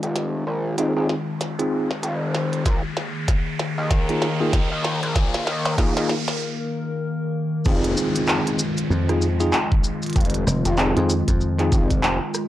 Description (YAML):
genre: glitch hop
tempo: 96 BPM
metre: 4/4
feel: swing 59% on 16ths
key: F minor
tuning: A4 = 439 Hz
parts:
  - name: warbly tape-like pad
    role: sustained chords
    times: 0.0-12.5 s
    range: Eb3 to Bb4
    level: -27 LUFS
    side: left 2 dB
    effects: chorus, built-in reverb, sidechain pumping
  - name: gritty driven synth bass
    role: bass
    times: 0.0-12.2 s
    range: Eb1 to Eb2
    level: -25 LUFS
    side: equal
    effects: high-pass filter
  - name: glitchy drum kit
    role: drums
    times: 0.0-12.5 s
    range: crash cymbal, handclaps, hi-hat, rim click, snare drum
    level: -26 LUFS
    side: equal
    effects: overdrive, high-pass filter on hats, high-pass filter on snare, high-pass filter on cymbals, high-pass filter on room
  - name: riser and downlifter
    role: sound effects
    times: 0.0-12.5 s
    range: none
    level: -32 LUFS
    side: right 1 dB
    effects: none
  - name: bell-like tine electric piano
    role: stabs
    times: 0.8-11.9 s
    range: Bb3 to Ab4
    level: -25 LUFS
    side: equal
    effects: medium stereo tremolo, sidechain pumping, low-pass filter, tape echo
  - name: electronic kick drum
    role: drums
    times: 2.7-12.0 s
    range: none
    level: -20 LUFS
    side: equal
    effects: none
  - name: maracas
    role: percussion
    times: 7.6-12.5 s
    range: none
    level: -30 LUFS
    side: left 2 dB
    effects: none
  - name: dry thumbed slap bass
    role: bass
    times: 8.9-11.7 s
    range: F1 to F2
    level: -21 LUFS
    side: equal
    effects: none
room: light reverb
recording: dry, gritty hardware recording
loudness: -20 LUFS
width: side -13 dB against mid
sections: 0.0-7.7 A section; 7.7-12.5 B section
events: build-up 0.0-7.7; drum fill 0.0-6.4; riser 0.0-6.4; filter sweep on ambient pad 0.0-7.7; break 6.4-7.7; drop 7.7-12.5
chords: 0.0 Fm7; 2.7 Bb7sus4; 7.7 Fm7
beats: | 0.16 0.78 1.41 2.03 | 2.66 3.28 3.91 4.53 | 5.16 5.78 6.41 7.03 | 7.66 8.28 8.91 9.53 | 10.16 10.78 11.41 12.03